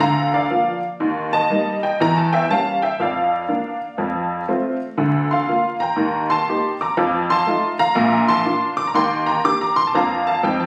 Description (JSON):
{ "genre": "jazz, stride piano", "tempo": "121 BPM", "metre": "4/4", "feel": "swing 64% on 8ths", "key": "Bb major", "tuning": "A4 = 440 Hz", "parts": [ { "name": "honky-tonk upright piano", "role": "solo", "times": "0.0-10.7 s", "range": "Bb1 to D6", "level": "-19 LUFS", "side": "equal", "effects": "none" } ], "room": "moderate club reverb, RT60 0.5 s", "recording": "recorded on a phone in the room, studio reverb, vinyl crackle", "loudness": "-19 LUFS", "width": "mono", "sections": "0.0-10.7 A section", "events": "none", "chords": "0.0 Bb/D; 1.0 Eb; 2.0 Edim7; 3.0 Bb/F; 4.0 F; 5.0 Bb/D; 6.0 Eb; 7.0 F7; 8.0 Bb; 8.9 Ebmaj7; 9.9 Bb/F" }